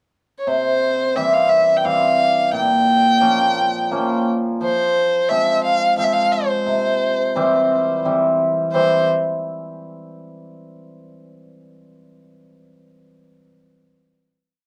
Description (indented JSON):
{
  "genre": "klezmer",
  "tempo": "87 BPM",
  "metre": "3/4",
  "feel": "straight",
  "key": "C phrygian dominant",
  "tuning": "A4 = 439 Hz",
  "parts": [
    { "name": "dark violin", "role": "melody", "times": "0.4-9.1 s", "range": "C5 to G5", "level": "-20 LUFS", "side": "equal", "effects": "none" },
    { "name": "cimbalom", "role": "accompaniment", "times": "0.5-9.1 s", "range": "Bb2 to Db4", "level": "-22 LUFS", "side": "equal", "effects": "none" }
  ],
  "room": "moderate studio reverb, RT60 0.5 s",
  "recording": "dark, warm production",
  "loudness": "-18 LUFS",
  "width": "mono",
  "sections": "0.0-0.5 pickup bar; 0.5-8.7 A section; 8.7-10.8 final chord",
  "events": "none",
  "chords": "0.5 C; 2.5 Bbm; 4.6 Fm; 6.7 C"
}